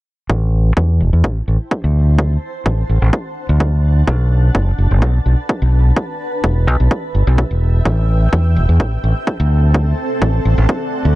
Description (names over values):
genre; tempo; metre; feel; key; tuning
piano house; 127 BPM; 4/4; straight; unclear; A4 = 440 Hz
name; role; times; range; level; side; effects
fingered electric bass; bass; 0.3-11.2 s; E1 to E2; -12 LUFS; equal; sidechain pumping, low-pass filter
electronic kick drum; drums; 0.3-10.8 s; none; -20 LUFS; equal; high-pass filter on kick
granular cloud pad; texture; 1.5-11.2 s; C4 to A5; -25 LUFS; right 1 dB; built-in reverb, sidechain pumping
room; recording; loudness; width
little or no reverb; nothing above 10.8 kHz; -13 LUFS; side -17 dB against mid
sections
0.3-11.2 A section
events
fade-in on ambient pad 0.3-11.2; filter sweep on fingered electric bass 0.3-11.2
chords
0.3 Am7; 1.9 D7; 4.1 Bm7; 6.0 Em7; 7.9 Am7; 9.5 D7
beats
| 0.30 0.77 1.24 1.71 | 2.19 2.66 3.13 3.60 | 4.08 4.55 5.02 5.49 | 5.96 6.44 6.91 7.38 | 7.86 8.33 8.80 9.27 | 9.74 10.22 10.69